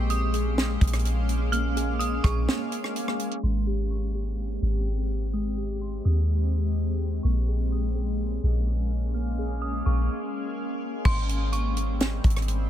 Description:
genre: hip hop, atmospheric cloud-rap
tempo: 126 BPM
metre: 4/4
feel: half-time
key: Ab major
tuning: A4 = 441 Hz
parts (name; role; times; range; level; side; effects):
- dark detuned synth bell; melody; 0.0-12.0 s; C6 to F6; -35 LUFS; right 2 dB; chorus, tremolo, low-pass filter, ping-pong delay
- granular cloud pad; sustained chords; 0.0-12.7 s; G3 to G4; -31 LUFS; left 1 dB; built-in reverb, sidechain pumping
- muted felt-like synth keys; arpeggios; 0.0-11.1 s; Ab3 to Ab4; -37 LUFS; right 1 dB; chorus, phaser, low-pass filter, ping-pong delay
- soft 808-style bass; bass; 0.0-12.7 s; Ab1 to Eb2; -25 LUFS; equal; none
- tight funk drum kit; drums; 0.1-3.4, 11.1-12.6 s; crash cymbal, hi-hat, kick drum, rim click, snare drum; -27 LUFS; equal; none
room: small room ambience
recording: low-pass filter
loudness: -24 LUFS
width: side -11 dB against mid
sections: 0.0-3.4 A section; 3.4-11.1 B section; 11.1-12.7 C section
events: break 2.5-3.4, 10.1-11.1; filter sweep 3.4-11.1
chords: 0.0 Bbm7; 3.4 Abmaj7; 7.2 Bbm7; 11.1 Abmaj7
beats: 0.10 0.57 1.05 | 1.53 2.00 2.48 2.96 | 3.43 3.91 4.38 4.86 | 5.34 5.81 6.29 6.76 | 7.24 7.72 8.19 8.67 | 9.15 9.62 10.10 10.57 | 11.05 11.53 12.00 12.48

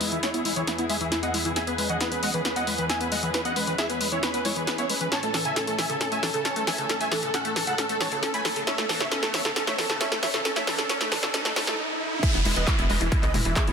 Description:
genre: uplifting trance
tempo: 135 BPM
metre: 4/4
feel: straight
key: E major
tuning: A4 = 440 Hz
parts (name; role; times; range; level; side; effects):
- dense compressed supersaw; melody; 0.0-13.7 s; C#4 to B5; -29 LUFS; right 1 dB; sidechain pumping, low-pass filter, ping-pong delay
- plucky unison lead; second line; 0.0-13.7 s; E4 to B5; -34 LUFS; right 1 dB; sidechain pumping, ping-pong delay
- warm chamber string section; sustained chords; 0.0-13.7 s; E2 to B4; -35 LUFS; left 1 dB; sidechain pumping
- liquid acid bass; arpeggios; 0.0-13.7 s; C#3 to E4; -33 LUFS; left 3 dB; chorus, sidechain pumping, ping-pong delay
- punchy analog drum machine; drums; 0.0-13.7 s; crash cymbal, handclaps, hi-hat, snare drum, toms; -28 LUFS; equal; high-pass filter on hats, high-pass filter on snare, high-pass filter on toms, high-pass filter on cymbals
- riser and downlifter; sound effects; 6.7-13.7 s; none; -33 LUFS; right 1 dB; none
- electronic kick drum; drums; 12.2-13.7 s; none; -24 LUFS; equal; overdrive
- tight sequencer bass; bass; 12.3-13.7 s; E1 to B1; -27 LUFS; equal; sidechain pumping
room: moderate recital hall reverb, RT60 1.8 s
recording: dense, heavily limited modern master, high-pass filter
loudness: -23 LUFS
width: side -6 dB against mid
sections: 0.0-12.2 A section; 12.2-13.7 B section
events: build-up 0.0-12.2; drum fill 0.0-11.8; filter sweep on acid bass 0.0-12.2; filter sweep on digital synth lead 0.0-12.2; riser 6.7-12.2; stop 11.8-12.2; drop 12.2-13.7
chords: 0.0 E; 5.1 A; 12.2 E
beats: 0.23 0.67 1.12 | 1.56 2.01 2.45 2.90 | 3.34 3.79 4.23 4.67 | 5.12 5.56 6.01 6.45 | 6.90 7.34 7.79 8.23 | 8.67 9.12 9.56 10.01 | 10.45 10.90 11.34 11.79 | 12.23 12.67 13.12 13.56

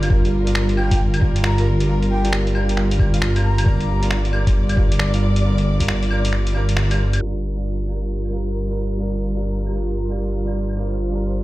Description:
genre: future garage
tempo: 135 BPM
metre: 4/4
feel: swing 64% on 16ths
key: unclear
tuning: A4 = 440 Hz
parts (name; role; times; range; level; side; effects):
- bright upright piano; accompaniment; 0.0-11.4 s; G3 to Bb4; -28 LUFS; right 4 dB; sidechain pumping, digital delay
- rich studio string section; sustained chords; 0.0-11.4 s; G3 to D5; -26 LUFS; right 1 dB; vintage 12-bit sampler grit, sidechain pumping
- dark detuned saw bass; bass; 0.0-11.4 s; G1; -20 LUFS; equal; sidechain pumping
- lo-fi sampler-style drum kit; drums; 0.0-10.8 s; claves, finger snaps, hi-hat; -26 LUFS; left 1 dB; low-pass filter on hats, low-pass filter on snare, low-pass filter on perc, low-pass filter on room
- electronic kick drum; drums; 0.1-5.9 s; none; -18 LUFS; equal; none
- breathy flute-like synth lead; melody; 0.8-4.1 s; F5 to Bb5; -30 LUFS; equal; lush chorus, vintage 12-bit sampler grit, digital delay
room: light reverb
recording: played on a big sound system in a bare room, stone room reverb, low-pass filter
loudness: -17 LUFS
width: side -17 dB against mid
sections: 0.0-7.2 A section; 7.2-11.4 B section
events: kick drops out 6.3-7.2; band accent 6.8; filter sweep on drum 7.2-11.4; filter sweep 7.2-11.4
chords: 0.0 Gm7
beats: | 0.10 0.55 0.99 1.44 | 1.88 2.33 2.77 3.22 | 3.66 4.11 4.55 4.99 | 5.44 5.88 6.33 6.77 | 7.22 7.66 8.11 8.55 | 8.99 9.44 9.88 10.33 | 10.77 11.22

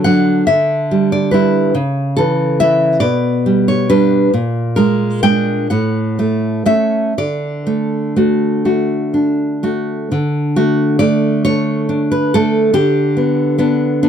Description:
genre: romantic piece for solo classical guitar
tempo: 39-48 BPM (dotted quarters)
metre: 6/8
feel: rubato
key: D major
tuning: A4 = 440 Hz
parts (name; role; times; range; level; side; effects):
- nylon-string guitar; solo; 0.0-14.1 s; A2 to G5; -12 LUFS; equal; none
room: little or no reverb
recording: dry, close 1970s-style studio recording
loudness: -12 LUFS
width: side -8 dB against mid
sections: 0.0-10.1 A section; 10.1-14.1 A section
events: none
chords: 0.5 Em7/D; 1.8 C#m; 3.0 G/B; 4.3 Bb7; 5.7 A; 7.2 D; 10.1 D5; 12.8 G/D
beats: 0.47 | 1.76 3.02 | 4.33 5.70 | 7.17 8.66 | 10.15 11.47 | 12.77 14.02

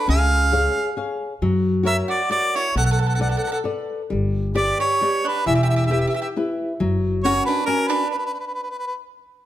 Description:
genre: italian folk, Italian serenade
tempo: 134 BPM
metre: 3/4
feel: straight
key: unclear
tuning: A4 = 443 Hz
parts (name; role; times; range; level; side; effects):
- warm harmonica; melody; 0.0-8.9 s; A#4 to F#5; -22 LUFS; right 1 dB; none
- bowl-back mandolin; second line; 0.0-8.1 s; C#4 to A#4; -28 LUFS; right 7 dB; none
- flamenco guitar; accompaniment; 0.1-8.0 s; E3 to E#5; -24 LUFS; left 3 dB; none
- upright bass; bass; 0.1-7.4 s; E1 to F#2; -21 LUFS; equal; none
room: light reverb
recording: none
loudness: -19 LUFS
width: side -13 dB against mid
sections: 0.0-9.5 A section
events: stop 8.1-9.5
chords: 0.1 C#; 1.4 F#; 2.8 Bm7; 4.1 G; 5.5 Em; 6.8 F#; 8.1 N.C.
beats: | 0.08 0.53 0.97 | 1.42 1.86 2.31 | 2.75 3.20 3.65 | 4.10 4.55 5.00 | 5.45 5.90 6.35 | 6.79 7.24 7.68 | 8.13 8.57

